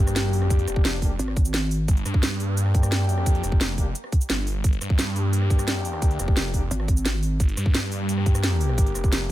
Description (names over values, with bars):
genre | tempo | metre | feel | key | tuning
dark technical drum and bass | 174 BPM | 4/4 | straight | G phrygian | A4 = 440 Hz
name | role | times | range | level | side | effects
mellow brass ensemble | stabs | 0.0-9.3 s | Bb3 to G4 | -32 LUFS | left 4 dB | dub echo
phased detuned saw bass | bass | 0.0-9.3 s | F1 to G2 | -24 LUFS | equal | phaser, tube saturation, sidechain pumping
impact | sound effects | 0.0-0.5 s | none | -36 LUFS | equal | none
drum and bass drum kit | drums | 0.1-9.3 s | hi-hat, rim click, shaker, snare drum | -28 LUFS | right 1 dB | none
electronic kick drum | drums | 0.5-9.3 s | none | -20 LUFS | equal | none
pulsing pluck wobble bass | bass | 1.2-1.9, 6.7-7.4 s | Ab1 | -24 LUFS | equal | chorus
room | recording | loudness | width
little or no reverb | none | -20 LUFS | side -14 dB against mid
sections
0.0-9.3 A section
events
impact 0.0-0.5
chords
0.0 Gm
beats
0.16 | 0.50 0.85 1.19 1.54 | 1.88 2.23 2.57 2.92 | 3.26 3.61 3.95 4.30 | 4.64 4.99 5.33 5.68 | 6.02 6.37 6.71 7.05 | 7.40 7.75 8.09 8.44 | 8.78 9.12